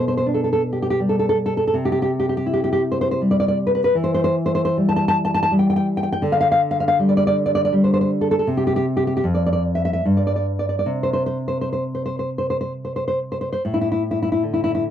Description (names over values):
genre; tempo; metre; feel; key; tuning
romantic piece for solo classical guitar; 64-84 BPM; 3/4; rubato; unclear; A4 = 439 Hz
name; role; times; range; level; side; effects
nylon-string guitar; solo; 0.0-14.9 s; F2 to A5; -18 LUFS; equal; none
room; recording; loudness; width
light reverb; dry, close 1970s-style studio recording; -18 LUFS; side -10 dB against mid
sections
0.0-13.6 A section; 13.6-14.9 B section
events
none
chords
0.0 G/B; 1.7 C; 3.9 Emadd11; 6.2 G5/D; 8.5 N.C.; 13.6 A5